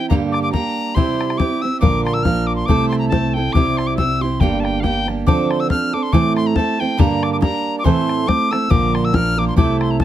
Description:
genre	celtic folk, Celtic polka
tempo	139 BPM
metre	2/4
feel	swing 55% on 8ths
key	G dorian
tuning	A4 = 439 Hz
part	bright wooden whistle	melody	0.0-10.0 s	F5 to F6	-22 LUFS	left 3 dB	none
part	fingerpicked steel-string acoustic guitar	accompaniment	0.0-10.0 s	G2 to Bb4	-18 LUFS	right 4 dB	none
part	bodhran	percussion	0.1-10.0 s	none	-18 LUFS	left 3 dB	none
part	upright bass	bass	1.8-5.2, 8.7-10.0 s	G1 to C2	-22 LUFS	left 1 dB	none
room	light reverb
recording	close, detailed microphones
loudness	-15 LUFS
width	side -12 dB against mid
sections	0.0-5.3 A section; 5.3-10.0 A section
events	none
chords	0.1 Gm; 1.0 C; 1.8 Bb; 2.7 Am/C; 3.5 C; 4.4 Gm; 5.3 Dm7; 6.1 Am; 7.0 Gm; 7.8 Am; 8.7 Bb

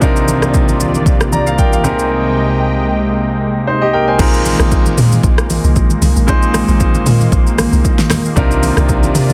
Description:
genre	amapiano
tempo	115 BPM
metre	4/4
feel	swing 55% on 16ths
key	unclear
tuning	A4 = 440 Hz
part	clear grand piano	accompaniment	0.0-9.3 s	Bb2 to Bb5	-18 LUFS	equal	none
part	lush unison pad	sustained chords	0.0-9.3 s	C2 to G5	-20 LUFS	equal	chorus, sidechain pumping
part	deep house drum kit	drums	0.0-9.3 s	crash cymbal, hi-hat, kick drum, rim click, shaker, snare drum	-17 LUFS	equal	overdrive
part	congas	percussion	0.3-9.3 s	none	-25 LUFS	equal	none
part	deep log drum bass	bass	4.2-9.3 s	Bb1 to C3	-16 LUFS	equal	none
room	little or no reverb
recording	dense, heavily limited modern master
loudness	-13 LUFS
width	mono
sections	0.0-4.2 A section; 4.2-9.3 B section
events	drop 4.2-9.3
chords	0.0 Cm11; 1.8 Abmaj9/C; 4.2 Bb7sus4; 8.4 Cm11

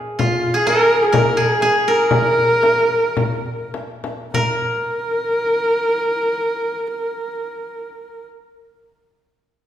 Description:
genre	mongolian traditional, Mongolian folk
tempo	97-129 BPM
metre	4/4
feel	straight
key	Bb yu mode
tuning	A4 = 440 Hz
part	steel-string zither	second line	0.0-8.3 s	F4 to Db5	-20 LUFS	equal	none
part	dark horsehead fiddle	melody	0.2-8.3 s	F4 to Bb4	-18 LUFS	equal	none
part	frame drum	percussion	0.2-4.6 s	none	-23 LUFS	left 3 dB	none
room	wet recital hall reverb, RT60 1.5 s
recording	recorded in a church or concert hall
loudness	-16 LUFS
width	side -10 dB against mid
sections	0.0-4.3 A section; 4.3-9.3 B section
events	slowing down 0.2-4.3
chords	none

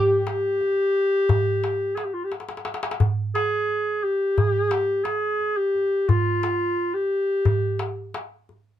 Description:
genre	Turkish makam ensemble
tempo	175 BPM (eighths)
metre	9/8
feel	straight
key	unclear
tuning	A4 = 440 Hz
part	mellow clarinet	melody	0.0-8.2 s	F4 to Ab4	-22 LUFS	left 1 dB	none
part	oud	second line	0.0-1.9 s	G4	-24 LUFS	equal	none
part	darbuka	percussion	0.1-8.6 s	none	-24 LUFS	equal	none
room	little or no reverb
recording	close, detailed microphones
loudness	-21 LUFS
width	side -11 dB against mid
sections	0.0-3.0 A section; 3.0-8.8 B section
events	drum fill 2.3-3.0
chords	none

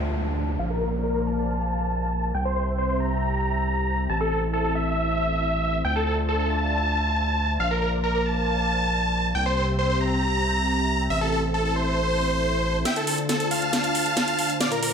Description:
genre	uplifting trance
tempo	137 BPM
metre	4/4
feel	straight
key	D minor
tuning	A4 = 439 Hz
part	big supersaw lead	melody	0.0-14.9 s	A4 to Bb5	-25 LUFS	equal	low-pass filter, tape echo
part	analog string pad	sustained chords	0.0-14.9 s	D2 to G5	-29 LUFS	left 1 dB	ensemble chorus
part	gritty driven synth bass	bass	0.0-12.8 s	A1 to D2	-26 LUFS	equal	none
part	downlifter	sound effects	0.0-2.3 s	none	-36 LUFS	right 1 dB	none
part	techno drum kit	drums	12.9-14.9 s	hi-hat, snare drum	-26 LUFS	equal	low-pass filter on hats, low-pass filter on perc, low-pass filter on snare
room	moderate recital hall reverb, RT60 1.6 s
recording	none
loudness	-22 LUFS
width	side -7 dB against mid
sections	0.0-12.9 A section; 12.9-14.9 B section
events	filter sweep on supersaw synth 0.0-12.9; filter sweep on analog synth pad 0.0-12.9; build-up 12.9-14.9; drum fill 12.9-14.9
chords	0.0 Dm7; 0.6 Bbadd9; 2.3 C; 4.1 Am; 5.8 Dm7; 7.6 Bbadd9; 9.4 C; 11.1 Am; 12.9 Dm7

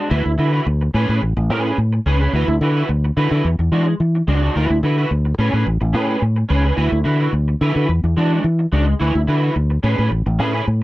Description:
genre	disco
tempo	108 BPM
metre	4/4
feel	straight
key	unclear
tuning	A4 = 440 Hz
part	electric guitar at the edge of break-up	accompaniment	0.0-10.7 s	G#3 to B4	-21 LUFS	right 1 dB	ensemble chorus
part	fingered electric bass	bass	0.1-10.8 s	A1 to E3	-16 LUFS	equal	none
room	little or no reverb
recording	dry, close 1970s-style studio recording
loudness	-15 LUFS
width	side -17 dB against mid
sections	0.1-10.8 A section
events	none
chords	0.1 D69; 0.9 Amaj9; 2.3 D69; 3.4 E9; 4.6 D69; 5.4 Amaj9; 6.8 D69; 7.9 E9; 9.0 D69; 9.8 Amaj9

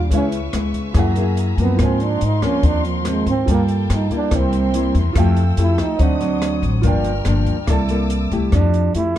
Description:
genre	bossa nova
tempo	142 BPM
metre	4/4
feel	straight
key	F major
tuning	A4 = 444 Hz
part	breathy trombone	melody	0.0-9.2 s	F3 to E4	-22 LUFS	right 5 dB	none
part	nylon-string guitar	accompaniment	0.0-9.2 s	G2 to A4	-23 LUFS	left 3 dB	none
part	warm grand piano	accompaniment	0.0-8.6 s	Db4 to A5	-28 LUFS	right 5 dB	none
part	warm studio string section	sustained chords	0.0-8.5 s	Ab4 to F6	-31 LUFS	left 4 dB	none
part	upright bass	bass	0.0-9.1 s	G1 to Ab2	-19 LUFS	equal	none
part	open jazz drum kit	drums	0.1-9.2 s	hi-hat, kick drum, rim click	-22 LUFS	left 1 dB	none
room	little or no reverb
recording	dark, warm production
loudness	-15 LUFS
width	side -12 dB against mid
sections	0.0-8.5 A section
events	trombone solo 0.0-8.5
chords	0.1 Dbm7; 1.0 Gb9; 1.8 Ab69; 3.5 Gm9; 4.3 C7; 5.2 Fmaj9; 6.0 D7b9; 6.8 Gm7; 7.7 C13; 8.5 Fmaj9

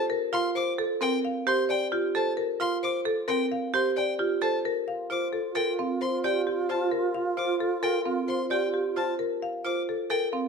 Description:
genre	classical, minimalist pattern music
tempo	132 BPM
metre	5/4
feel	straight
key	Bb major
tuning	A4 = 440 Hz
part	marimba with hard mallets	melody	0.0-10.5 s	G4 to F5	-29 LUFS	left 6 dB	none
part	marimba with medium hard mallets	arpeggios	0.0-10.5 s	C4 to A4	-29 LUFS	right 8 dB	none
part	rich violin	arpeggios	0.0-10.3 s	G5 to D6	-33 LUFS	left 3 dB	none
part	bright wooden-headed alto flute	second line	4.9-9.2 s	F4	-31 LUFS	right 4 dB	none
room	wet large studio reverb, RT60 1.2 s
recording	none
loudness	-25 LUFS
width	side -5 dB against mid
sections	0.0-4.9 A section; 4.9-10.5 B section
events	none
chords	0.0 Bbmaj7sus2

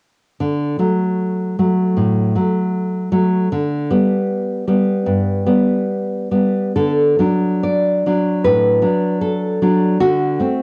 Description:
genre	romantic piece for solo classical guitar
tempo	75 BPM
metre	4/4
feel	uneven beats, rubato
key	D major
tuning	A4 = 441 Hz
part	nylon-string guitar	solo	0.4-10.6 s	G2 to D5	-17 LUFS	equal	cassette tape
room	moderate studio reverb, RT60 0.5 s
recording	home recording on cassette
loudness	-17 LUFS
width	mono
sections	0.4-6.8 A section; 6.8-10.6 B section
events	none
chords	0.4 D; 3.5 G/D; 6.8 D; 10.0 D7

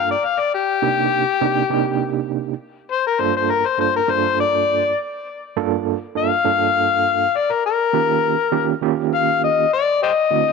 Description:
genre	blues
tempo	101 BPM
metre	4/4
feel	straight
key	G minor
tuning	A4 = 440 Hz
part	overdriven harmonica	melody	0.0-10.5 s	G4 to F5	-18 LUFS	left 7 dB	none
part	overdriven reed electric piano	accompaniment	0.0-10.5 s	G2 to A4	-21 LUFS	right 15 dB	fast tremolo
room	moderate spring reverb, RT60 2.0 s, small room ambience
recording	1960s-style stereo with parts hard left and right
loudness	-16 LUFS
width	side -4 dB against mid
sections	0.0-10.5 A section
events	harmonica solo 0.0-10.5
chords	0.0 Gm7; 0.8 Cm7; 3.2 Gm7; 7.9 Eb7

